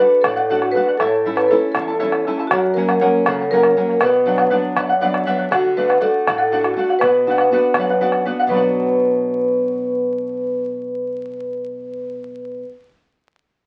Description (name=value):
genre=andean folk, Andean ensemble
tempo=80 BPM (dotted quarters)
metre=6/8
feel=straight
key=B minor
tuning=A4 = 442 Hz
part: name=vibraphone with medium mallets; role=melody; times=0.0-12.7 s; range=F#4 to B4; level=-20 LUFS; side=equal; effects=none
part: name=charango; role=accompaniment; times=0.0-12.8 s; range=E4 to A5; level=-25 LUFS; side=equal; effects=none
part: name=nylon-string guitar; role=accompaniment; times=0.0-12.7 s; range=E2 to E5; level=-26 LUFS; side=equal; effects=none
part: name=bombo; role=percussion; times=0.2-8.7 s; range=none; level=-24 LUFS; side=equal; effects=none
room=moderate small room reverb, RT60 0.6 s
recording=very old 78 rpm record, vinyl crackle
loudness=-18 LUFS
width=mono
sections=0.0-8.5 A section; 8.5-11.5 B section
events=nylon-string guitar fill 4.8-5.5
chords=0.0 D; 1.0 A; 2.5 F#; 4.0 Bm; 5.5 D; 7.0 Bm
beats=0.24 | 1.00 1.75 | 2.51 3.26 | 4.01 4.77 | 5.52 6.27 | 7.02 7.77 | 8.52 9.26 | 10.01 10.75